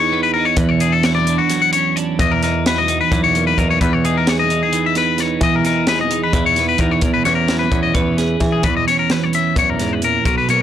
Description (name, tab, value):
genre	math rock and midwest emo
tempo	260 BPM (eighths)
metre	7/8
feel	straight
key	E lydian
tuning	A4 = 440 Hz
part	twelve-string electric guitar	accompaniment	0.0-10.6 s	E2 to B4	-20 LUFS	right 6 dB	none
part	twangy electric guitar	arpeggios	0.0-10.6 s	F#4 to F#5	-18 LUFS	left 8 dB	none
part	picked electric bass	bass	0.6-10.6 s	B1 to E3	-21 LUFS	equal	none
part	crisp fusion drum kit	drums	0.6-10.6 s	hi-hat, kick drum, snare drum	-21 LUFS	equal	none
room	little or no reverb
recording	blown-out, overdriven recording, overdrive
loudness	-14 LUFS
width	side -10 dB against mid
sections	0.0-7.0 A section; 7.0-10.6 B section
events	none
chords	0.0 Emaj7; 0.6 Dmaj7/E; 2.2 Bmaj7/E; 3.8 Emaj7; 7.0 E6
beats	0.12 0.35 | 0.58 0.81 1.04 1.28 1.51 1.74 1.97 | 2.20 2.43 2.66 2.89 3.12 3.35 3.58 | 3.81 4.04 4.27 4.50 4.73 4.96 5.19 | 5.42 5.65 5.88 6.11 6.34 6.57 6.80 | 7.03 7.26 7.49 7.72 7.96 8.19 8.42 | 8.65 8.88 9.11 9.34 9.57 9.80 10.03 | 10.26 10.49